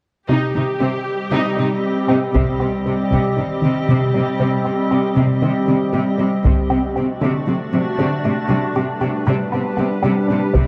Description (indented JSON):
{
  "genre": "cinematic, hybrid orchestral and electronic film score",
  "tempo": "117 BPM",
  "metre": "4/4",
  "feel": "straight",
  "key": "C harmonic minor",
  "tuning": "A4 = 440 Hz",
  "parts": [
    { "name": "rich symphonic viola section", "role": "accompaniment", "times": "0.3-2.2 s", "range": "C4 to G4", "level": "-24 LUFS", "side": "equal", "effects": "none" },
    { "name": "glassy FM pad", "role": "sustained chords", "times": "0.8-10.7 s", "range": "G3 to Eb5", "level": "-23 LUFS", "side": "equal", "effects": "ensemble chorus, built-in reverb, tremolo" },
    { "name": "resonant blip pluck", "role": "arpeggios", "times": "0.3-10.7 s", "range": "C3 to G4", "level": "-24 LUFS", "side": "equal", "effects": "phaser, tape echo" },
    { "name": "clear symphonic cello section", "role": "bass", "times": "0.3-10.6 s", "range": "C3", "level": "-24 LUFS", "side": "equal", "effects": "none" },
    { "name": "taiko ensemble", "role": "drums", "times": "2.4-3.4, 6.5-7.4, 10.6-10.7 s", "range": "none", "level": "-22 LUFS", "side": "equal", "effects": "none" }
  ],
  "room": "wet recital hall reverb, RT60 1.5 s",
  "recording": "dark, warm production, lossy compression artefacts",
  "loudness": "-18 LUFS",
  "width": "mono",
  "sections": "0.3-2.4 A section; 2.4-10.7 B section",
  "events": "build-up 2.4-10.7",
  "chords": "0.3 Cm; 6.5 D7/C; 8.5 G/C"
}